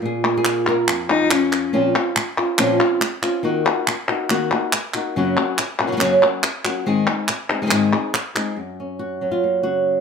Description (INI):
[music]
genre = flamenco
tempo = 140 BPM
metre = 4/4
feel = straight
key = Bb minor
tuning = A4 = 440 Hz
[part]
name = flamenco guitar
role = melody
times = 0.0-10.0 s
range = F2 to Bb4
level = -19 LUFS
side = equal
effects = none
[part]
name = palmas hand claps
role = percussion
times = 0.2-8.6 s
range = none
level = -21 LUFS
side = left 1 dB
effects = none
[part]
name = dark cello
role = second line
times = 1.1-1.7 s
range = Db4 to Eb4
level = -19 LUFS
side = left 7 dB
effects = none
[sound]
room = light reverb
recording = close, detailed microphones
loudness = -17 LUFS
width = side -6 dB against mid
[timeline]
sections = 0.0-1.7 A section; 1.7-8.6 B section; 8.6-10.0 C section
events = none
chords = 0.0 Bbm; 1.7 Bbmadd9; 3.4 Ebm; 5.2 Gb; 6.9 Ab; 8.6 Gb